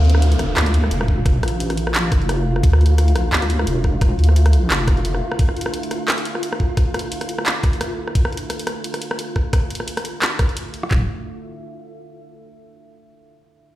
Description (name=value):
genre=half-time drum and bass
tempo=174 BPM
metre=4/4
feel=swing 56% on 16ths, half-time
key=D minor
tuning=A4 = 445 Hz
part: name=deep dark ambient pad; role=sustained chords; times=0.0-12.3 s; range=D4 to F5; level=-30 LUFS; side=right 1 dB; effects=chorus, built-in reverb, vintage 12-bit sampler grit, sidechain pumping
part: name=deep soft wobble bass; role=bass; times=0.0-5.2, 10.9-11.1 s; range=D1 to D2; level=-16 LUFS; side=equal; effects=chorus
part: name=drum and bass drum kit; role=drums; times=0.0-10.9 s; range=handclaps, hi-hat, rim click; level=-24 LUFS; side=equal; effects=none
part: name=downlifter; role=sound effects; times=0.0-2.6 s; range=none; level=-30 LUFS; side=left 2 dB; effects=none
part: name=flickering grainy texture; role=texture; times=0.4-10.9 s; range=F4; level=-30 LUFS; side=left 1 dB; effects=built-in reverb
part: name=drum and bass drum kit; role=drums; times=1.1-11.0 s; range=handclaps, kick drum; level=-17 LUFS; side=equal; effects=none
room=light reverb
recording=played on a big sound system in a bare room, stone room reverb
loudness=-16 LUFS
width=side -14 dB against mid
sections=0.0-10.9 A section; 10.9-12.3 B section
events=none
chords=0.0 Dmadd9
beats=0.22 0.56 0.91 | 1.25 1.60 1.95 2.29 | 2.63 2.98 3.32 3.67 | 4.01 4.36 4.70 5.05 | 5.39 5.74 6.08 6.43 | 6.77 7.12 7.46 7.81 | 8.15 8.50 8.84 9.19 | 9.53 9.88 10.22 10.56 | 10.91 11.26 11.60 11.95